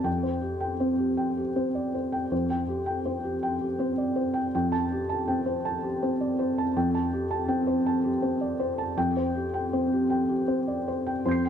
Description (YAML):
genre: neoclassical minimalist piano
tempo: 54 BPM (dotted quarters)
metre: 6/8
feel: rubato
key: F major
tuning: A4 = 439 Hz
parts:
  - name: felt-muted upright piano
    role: solo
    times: 0.0-11.5 s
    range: F2 to C7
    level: -25 LUFS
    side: equal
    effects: slapback echo
room: moderate studio ambience, RT60 0.5 s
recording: dark, warm production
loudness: -25 LUFS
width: side -8 dB against mid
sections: 0.0-11.5 A section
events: none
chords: 0.1 Csus4/F; 4.5 Fadd9; 9.0 Csus4/F